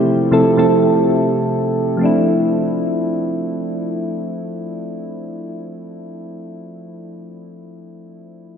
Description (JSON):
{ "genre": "amapiano", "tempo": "free time", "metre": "none", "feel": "none", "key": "D minor", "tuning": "A4 = 440 Hz", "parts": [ { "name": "soft electric-piano-like synth keys", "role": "accompaniment", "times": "0.0-8.6 s", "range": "C3 to A4", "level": "-17 LUFS", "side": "equal", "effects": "chorus" } ], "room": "wet church reverb, RT60 3.6 s", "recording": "dreamy mix soaked in reverb", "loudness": "-15 LUFS", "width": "side -7 dB against mid", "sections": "0.0-2.0 A section; 2.0-6.2 B section", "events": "none", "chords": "0.0 Fmaj9/C; 2.0 Dm9" }